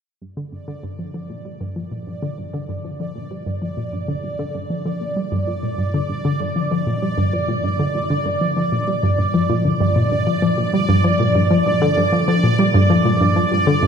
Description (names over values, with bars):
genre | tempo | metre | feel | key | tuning
ambient, sequencer-driven space music | 97 BPM | 4/4 | straight | G minor | A4 = 441 Hz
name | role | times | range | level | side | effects
analog pluck | riff | 0.2-13.9 s | G2 to G3 | -18 LUFS | equal | chorus, tape echo, shimmer reverb
bubbling stepped-filter texture | texture | 0.7-13.9 s | D5 | -23 LUFS | right 2 dB | chorus, built-in reverb, shimmer reverb
room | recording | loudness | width
wet cathedral reverb, RT60 5.9 s | dreamy mix soaked in reverb | -17 LUFS | side -7 dB against mid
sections
0.2-13.9 A section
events
fade-in on synth arpeggio sound 0.2-13.9; fade-in on synth texture 0.2-13.9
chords
0.2 Gm